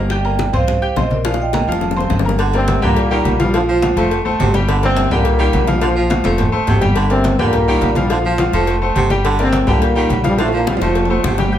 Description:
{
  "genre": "latin, salsa",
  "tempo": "210 BPM",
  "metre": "4/4",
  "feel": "straight",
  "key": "G minor",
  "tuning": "A4 = 440 Hz",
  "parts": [
    { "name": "bright grand piano", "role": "accompaniment", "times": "0.0-11.6 s", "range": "F3 to G6", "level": "-20 LUFS", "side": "left 1 dB", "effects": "none" },
    { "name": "upright bass", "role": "bass", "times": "0.0-11.6 s", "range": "F1 to C2", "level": "-19 LUFS", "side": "equal", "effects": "none" },
    { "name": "vibraphone with medium mallets", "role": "melody", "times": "0.1-2.1 s", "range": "Bb4 to A5", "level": "-21 LUFS", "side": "right 5 dB", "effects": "none" },
    { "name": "bongos and cowbell", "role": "percussion", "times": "0.1-11.5 s", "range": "none", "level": "-26 LUFS", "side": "left 6 dB", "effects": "none" },
    { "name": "congas", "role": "percussion", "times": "0.1-11.6 s", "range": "none", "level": "-22 LUFS", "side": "left 1 dB", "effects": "none" },
    { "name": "timbales and agogo bells", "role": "percussion", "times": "0.1-11.6 s", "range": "none", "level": "-26 LUFS", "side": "right 5 dB", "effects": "none" },
    { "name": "clear baritone saxophone", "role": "second line", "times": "2.4-11.4 s", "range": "C3 to F3", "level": "-22 LUFS", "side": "right 3 dB", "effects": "none" },
    { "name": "warm trombone section", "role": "melody", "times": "2.6-11.4 s", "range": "G2 to F4", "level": "-18 LUFS", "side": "left 1 dB", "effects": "none" }
  ],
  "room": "wet studio reverb, RT60 0.6 s",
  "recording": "heard from further back in the room",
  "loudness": "-13 LUFS",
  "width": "side -10 dB against mid",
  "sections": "0.0-2.4 A section; 2.4-11.5 B section",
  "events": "drum fill 1.3-2.4, 6.2-7.0, 10.4-11.5",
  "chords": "0.1 Gm; 0.7 C5; 1.3 Bb5; 1.8 F; 2.4 Gm; 3.0 Cm7; 3.5 Bbmaj7(no3); 4.1 F; 4.7 Gm; 5.2 Cm7; 5.8 Bbmaj7(no3); 6.4 F; 7.0 Gm; 7.5 Cm7; 8.1 Bbmaj7(no3); 8.7 F; 9.2 Gm; 9.8 Cm7; 10.4 Bbmaj7(no3); 11.0 F"
}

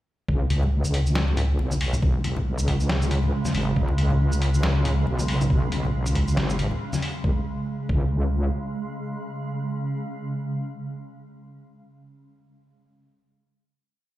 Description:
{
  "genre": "deep dubstep",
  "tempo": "138 BPM",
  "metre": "4/4",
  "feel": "swing 57% on 16ths, half-time",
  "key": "unclear",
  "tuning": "A4 = 440 Hz",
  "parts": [
    { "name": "granular cloud pad", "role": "sustained chords", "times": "1.9-10.7 s", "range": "C#3 to G#3", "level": "-29 LUFS", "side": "right 2 dB", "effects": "built-in reverb" },
    { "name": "wobble bass", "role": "bass", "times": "0.3-8.5 s", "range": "G#1 to C#2", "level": "-23 LUFS", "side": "equal", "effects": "chorus" },
    { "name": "electronic kick drum", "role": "drums", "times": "0.3-8.0 s", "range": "none", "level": "-24 LUFS", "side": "equal", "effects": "none" },
    { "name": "trip hop sampler-style drum kit", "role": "drums", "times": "0.5-7.1 s", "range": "hi-hat, shaker, snare drum", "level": "-30 LUFS", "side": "left 1 dB", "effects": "none" },
    { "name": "congas", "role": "percussion", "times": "0.5-7.0 s", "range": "none", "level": "-31 LUFS", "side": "left 2 dB", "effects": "none" }
  ],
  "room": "light reverb",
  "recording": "played on a big sound system in a bare room, stone room reverb",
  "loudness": "-22 LUFS",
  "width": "side -15 dB against mid",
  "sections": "0.3-7.2 drop; 7.2-10.7 final chord",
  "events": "drop 0.3-7.2",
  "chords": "0.3 C#5"
}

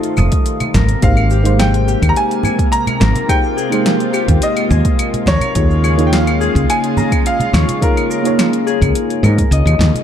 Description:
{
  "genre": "sunset chillout",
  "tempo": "106 BPM",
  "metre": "4/4",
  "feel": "straight",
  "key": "unclear",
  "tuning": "A4 = 440 Hz",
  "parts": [
    { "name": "bright concert grand piano", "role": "melody", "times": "0.0-9.5 s", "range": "Bb4 to Bb5", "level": "-21 LUFS", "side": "equal", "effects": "ping-pong delay" },
    { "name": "mellow FM electric piano", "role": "accompaniment", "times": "0.0-10.0 s", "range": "Ab3 to Db5", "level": "-19 LUFS", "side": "moving between left 4 dB and right 3 dB", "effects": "chorus, auto-pan, ping-pong delay" },
    { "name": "lush unison pad", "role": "sustained chords", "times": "0.0-10.0 s", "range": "C3 to F4", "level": "-23 LUFS", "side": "equal", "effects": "chorus" },
    { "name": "Celtic harp", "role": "arpeggios", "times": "0.0-10.0 s", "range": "G4 to Eb6", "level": "-24 LUFS", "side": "left 6 dB", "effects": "ping-pong delay" },
    { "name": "deep house drum kit", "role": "drums", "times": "0.0-10.0 s", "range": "claves, hi-hat, shaker, snare drum", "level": "-20 LUFS", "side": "equal", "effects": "overdrive" },
    { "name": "woody fretless electric bass", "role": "bass", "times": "0.2-9.9 s", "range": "F1 to Ab2", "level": "-13 LUFS", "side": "equal", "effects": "none" },
    { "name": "congas", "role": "percussion", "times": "0.2-10.0 s", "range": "none", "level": "-21 LUFS", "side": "right 2 dB", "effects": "none" },
    { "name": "electronic kick drum", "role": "drums", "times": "0.3-9.5 s", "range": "none", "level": "-17 LUFS", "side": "equal", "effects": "overdrive" }
  ],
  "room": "light reverb",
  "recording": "dark, warm production",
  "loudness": "-12 LUFS",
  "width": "side -9 dB against mid",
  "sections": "0.0-10.0 A section",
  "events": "kick drops out 9.5-10.0",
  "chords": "0.0 F7; 0.7 Abmaj9; 5.6 Eb9sus4"
}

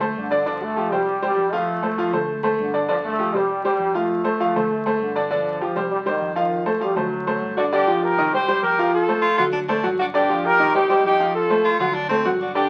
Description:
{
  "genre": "latin",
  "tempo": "199 BPM",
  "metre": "4/4",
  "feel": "straight",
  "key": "unclear",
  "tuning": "A4 = 439 Hz",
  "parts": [
    { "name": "bright baby grand piano", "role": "accompaniment", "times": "0.0-12.7 s", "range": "D3 to F#5", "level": "-24 LUFS", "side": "equal", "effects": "none" },
    { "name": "hollow-body short-scale fingered electric bass", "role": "bass", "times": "0.0-12.7 s", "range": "G1 to F2", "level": "-41 LUFS", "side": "equal", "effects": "none" },
    { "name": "mellow trombone section", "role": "melody", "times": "0.2-7.6 s", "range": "D3 to A3", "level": "-27 LUFS", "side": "equal", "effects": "none" },
    { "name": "warm horn section", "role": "melody", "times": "7.6-12.7 s", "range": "D4 to C5", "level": "-21 LUFS", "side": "equal", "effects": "none" },
    { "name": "edgy baritone saxophone", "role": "second line", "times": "9.2-12.3 s", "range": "C4 to F4", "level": "-24 LUFS", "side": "equal", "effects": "none" }
  ],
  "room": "wet studio reverb, RT60 0.6 s",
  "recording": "very old 78 rpm record, vinyl crackle",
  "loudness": "-21 LUFS",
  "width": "mono",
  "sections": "0.0-7.7 A section; 7.7-12.7 B section",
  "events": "none",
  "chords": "0.5 G5; 1.1 C5; 1.7 F; 2.3 D5; 2.9 G5; 3.5 C5; 4.1 F; 4.7 D5; 5.3 G5; 5.9 Cm; 6.5 F; 7.1 D7; 7.7 Gm7; 8.3 C5; 8.9 F; 9.5 D7; 10.1 Gm7; 10.7 Cm; 11.3 F; 11.9 D7"
}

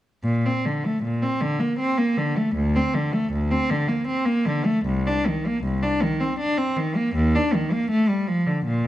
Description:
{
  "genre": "classical, baroque-style suite movement for unaccompanied cello",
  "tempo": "79 BPM",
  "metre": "3/4",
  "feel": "rubato",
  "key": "Bb major",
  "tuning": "A4 = 440 Hz",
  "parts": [
    { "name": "rich cello", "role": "solo", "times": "0.2-8.9 s", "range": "C2 to D4", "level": "-20 LUFS", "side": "equal", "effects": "none" }
  ],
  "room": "moderate recital hall reverb, RT60 1.4 s",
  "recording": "dark, warm production",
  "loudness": "-20 LUFS",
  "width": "side -14 dB against mid",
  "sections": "0.2-8.9 A section",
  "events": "none",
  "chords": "none"
}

